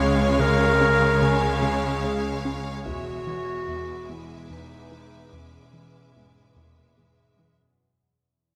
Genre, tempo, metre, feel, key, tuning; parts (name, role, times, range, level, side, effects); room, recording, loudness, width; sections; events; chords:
cinematic, suspense film score; 73 BPM; 3/4; straight; A4 = 440 Hz
rich studio violin section; melody; 0.0-7.6 s; E5 to E#5; -38 LUFS; equal
mellow clarinet; second line; 0.0-6.9 s; C#4 to C#5; -27 LUFS; equal
rich chamber violin section; second line; 0.0-7.6 s; B4 to C#5; -38 LUFS; equal
clear chamber viola section; accompaniment; 0.0-7.6 s; G#3; -36 LUFS; equal
plucky analog bass; riff; 0.0-7.6 s; E2 to C#4; -34 LUFS; equal
rich chamber double bass section; bass; 0.0-7.6 s; E1 to C#2; -32 LUFS; equal
rich studio cello section; bass; 0.0-7.8 s; E2 to C#3; -30 LUFS; equal
bowed-like drone; drone; 0.0-7.8 s; C#2 to E2; -36 LUFS; equal
clear studio violin section; texture; 0.0-7.3 s; G#5 to G#6; -42 LUFS; equal
vibraphone with hard mallets; texture; 0.0-7.8 s; B4 to G#5; -37 LUFS; equal
solo taiko drums; drums; 2.9-4.5 s; -43 LUFS; equal
moderate concert hall reverb, RT60 2.2 s; -23 LUFS; mono
0.0-7.8 A section
fade-out 0.0-7.8
0.0 C#; 2.9 E6